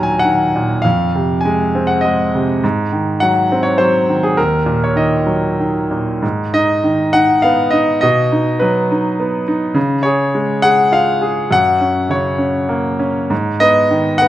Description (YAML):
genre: classical, lyrical solo piano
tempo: 102 BPM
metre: 3/4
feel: rubato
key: Eb dorian, G# dorian from 6.2 s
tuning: A4 = 441 Hz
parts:
  - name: bright concert grand piano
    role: solo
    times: 0.0-14.3 s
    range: Eb2 to Bb5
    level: -12 LUFS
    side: equal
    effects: none
room: moderate recital hall reverb, RT60 1.4 s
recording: none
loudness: -13 LUFS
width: side -13 dB against mid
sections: 0.0-6.2 A section; 6.2-14.3 B section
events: none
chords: 0.0 Ebm; 0.9 Fm; 2.6 Ab7; 4.4 Ebm; 6.2 G#m; 8.0 B; 9.8 C#; 11.5 F#; 13.3 G#m